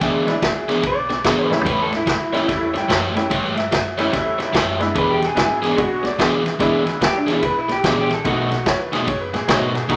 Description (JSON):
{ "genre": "electric blues shuffle", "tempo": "146 BPM", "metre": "4/4", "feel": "swing 64% on 8ths", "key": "E mixolydian", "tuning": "A4 = 439 Hz", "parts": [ { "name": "clear upright piano", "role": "second line", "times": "0.0-10.0 s", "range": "D#4 to G5", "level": "-30 LUFS", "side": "equal", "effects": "none" }, { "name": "overdriven semi-hollow guitar", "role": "riff", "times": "0.0-10.0 s", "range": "B2 to C#5", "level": "-24 LUFS", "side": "equal", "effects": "none" }, { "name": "upright bass", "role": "bass", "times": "0.0-10.0 s", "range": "E1 to A2", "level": "-37 LUFS", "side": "equal", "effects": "none" }, { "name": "vintage drum kit", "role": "drums", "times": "0.0-10.0 s", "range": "kick drum, ride cymbal, snare drum, toms", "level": "-24 LUFS", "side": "equal", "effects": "none" }, { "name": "honky-tonk upright piano", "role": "accompaniment", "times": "0.3-10.0 s", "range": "G3 to F#4", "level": "-26 LUFS", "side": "equal", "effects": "none" }, { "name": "electric guitar through a small old amp", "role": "melody", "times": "0.9-8.7 s", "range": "D4 to E5", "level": "-25 LUFS", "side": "equal", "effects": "none" } ], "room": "wet large studio reverb, RT60 0.9 s", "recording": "none", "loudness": "-19 LUFS", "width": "mono", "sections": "0.0-10.0 A section", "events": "drum fill 1.5", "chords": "0.0 E7; 1.7 A7; 5.0 E7; 8.2 B7" }